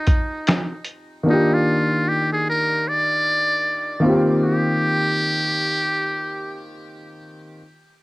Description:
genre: lo-fi hip hop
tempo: 76 BPM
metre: 4/4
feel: swing 61% on 16ths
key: Eb major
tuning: A4 = 440 Hz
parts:
  - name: trumpet with metal mute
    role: melody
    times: 0.0-6.8 s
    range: Eb4 to D5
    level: -21 LUFS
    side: equal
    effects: low-pass filter, cassette tape
  - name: dark upright piano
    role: accompaniment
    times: 0.0-7.6 s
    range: Eb3 to Ab4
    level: -21 LUFS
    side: equal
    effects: low-pass filter, cassette tape
  - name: lo-fi sampler-style drum kit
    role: drums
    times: 0.1-1.1 s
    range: finger snaps, hi-hat, kick drum, snare drum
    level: -18 LUFS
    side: equal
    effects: overdrive, cassette tape
room: light reverb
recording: home recording on cassette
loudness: -17 LUFS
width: side -21 dB against mid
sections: 0.0-7.6 A section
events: none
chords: 0.0 Fm7; 1.3 Ebmaj9; 4.0 Eb6

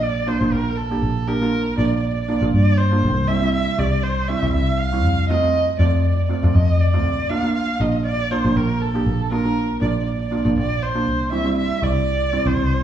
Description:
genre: calypso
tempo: 120 BPM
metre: 4/4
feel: swing 54% on 16ths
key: Bb major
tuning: A4 = 442 Hz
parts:
  - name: warm erhu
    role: melody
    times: 0.0-12.8 s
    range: A4 to F5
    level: -24 LUFS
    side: right 2 dB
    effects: none
  - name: steel pan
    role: accompaniment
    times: 0.0-12.8 s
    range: G3 to G4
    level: -22 LUFS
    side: right 2 dB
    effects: none
  - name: fingered electric bass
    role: bass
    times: 0.0-12.8 s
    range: Bb1 to G2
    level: -20 LUFS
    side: equal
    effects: none
room: wet large studio reverb, RT60 1.3 s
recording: band playing live in one room, small room ambience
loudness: -17 LUFS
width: side -10 dB against mid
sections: 0.0-12.8 A section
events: none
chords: 0.0 Bb; 3.0 C; 5.0 F7; 7.1 Bb; 11.1 C

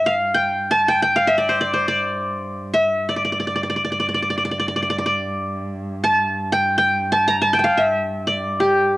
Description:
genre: Turkish makam ensemble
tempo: free time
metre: none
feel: none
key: G makam huseyni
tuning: A4 = 440 Hz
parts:
  - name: qanun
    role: melody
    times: 0.0-9.0 s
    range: G4 to Bb5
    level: -17 LUFS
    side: equal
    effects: none
  - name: muted cello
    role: drone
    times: 0.0-9.0 s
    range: G2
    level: -30 LUFS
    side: right 1 dB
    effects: none
room: little or no reverb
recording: dry, gritty hardware recording, cassette tape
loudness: -17 LUFS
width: side -18 dB against mid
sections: 0.0-9.0 A section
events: none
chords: none

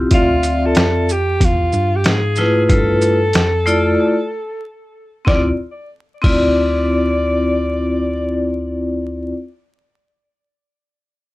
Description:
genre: hip hop, jazz-hop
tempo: 93 BPM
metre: 4/4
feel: swing 60% on 16ths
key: D dorian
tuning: A4 = 440 Hz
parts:
  - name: vibraphone with hard mallets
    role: accompaniment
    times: 0.0-9.3 s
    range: A3 to E5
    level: -17 LUFS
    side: left 1 dB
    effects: none
  - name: mellow tine electric piano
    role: bass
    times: 0.0-9.3 s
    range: D2 to G#2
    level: -21 LUFS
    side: equal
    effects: medium stereo tremolo
  - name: breathy alto saxophone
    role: melody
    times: 0.1-8.6 s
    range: F4 to D5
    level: -20 LUFS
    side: equal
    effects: none
  - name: trip hop sampler-style drum kit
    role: drums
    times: 0.1-6.4 s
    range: crash cymbal, hi-hat, kick drum, shaker, snare drum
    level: -17 LUFS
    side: equal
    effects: none
room: light reverb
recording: vinyl crackle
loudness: -14 LUFS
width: side -18 dB against mid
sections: 0.1-5.3 A section; 5.3-7.9 B section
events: break 4.0-5.3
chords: 0.1 Dm9; 2.0 G#m6; 2.7 G13; 5.3 Dm9

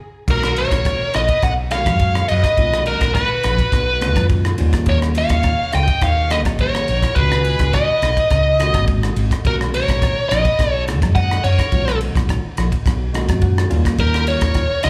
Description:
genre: electric jazz fusion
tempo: 105 BPM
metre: 4/4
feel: straight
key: B lydian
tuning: A4 = 439 Hz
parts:
  - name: bluesy overdriven lead guitar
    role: melody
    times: 0.3-14.9 s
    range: A#4 to G5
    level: -22 LUFS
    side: equal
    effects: distortion, slapback echo
  - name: crunchy overdriven guitar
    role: second line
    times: 0.3-14.9 s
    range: F#4 to D#5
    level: -32 LUFS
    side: equal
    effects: slapback echo
  - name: tine electric piano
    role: accompaniment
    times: 0.3-14.6 s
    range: A#2 to F#5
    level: -27 LUFS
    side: equal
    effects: analog chorus
  - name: woody fretless electric bass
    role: bass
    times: 0.3-14.9 s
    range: G#1 to F#2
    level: -22 LUFS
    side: equal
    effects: none
  - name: crisp fusion drum kit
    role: drums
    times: 0.3-14.9 s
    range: crash cymbal, kick drum, ride cymbal, rim click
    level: -23 LUFS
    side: equal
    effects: none
room: little or no reverb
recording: live gig heard through the venue's PA, club reverb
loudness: -17 LUFS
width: mono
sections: 0.3-14.9 A section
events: stop 0.0; tine electric piano fill 12.9-14.0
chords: 0.3 Bmaj9; 4.6 D#9; 7.2 C#9sus4; 9.4 Bmaj9; 13.7 D#9

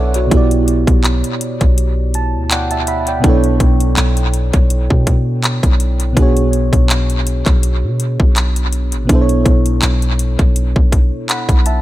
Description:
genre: contemporary R&B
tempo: 82 BPM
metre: 4/4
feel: swing 54% on 16ths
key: B minor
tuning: A4 = 438 Hz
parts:
  - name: mellow FM electric piano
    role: accompaniment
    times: 0.0-11.8 s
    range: B2 to B5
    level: -18 LUFS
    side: right 1 dB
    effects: chorus, dub echo
  - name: warm 808-style bass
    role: bass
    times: 0.0-11.8 s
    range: A1 to B2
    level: -15 LUFS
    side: equal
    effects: none
  - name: trap drum kit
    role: drums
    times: 0.1-11.8 s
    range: handclaps, hi-hat, kick drum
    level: -15 LUFS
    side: equal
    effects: dub echo
room: digital ambience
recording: echo-heavy mix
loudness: -12 LUFS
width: side -15 dB against mid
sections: 0.0-11.8 A section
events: FM electric piano fill 1.8-3.2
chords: 0.3 Gmaj13/B; 3.2 Bm11; 6.2 Bm69; 9.1 Bm11

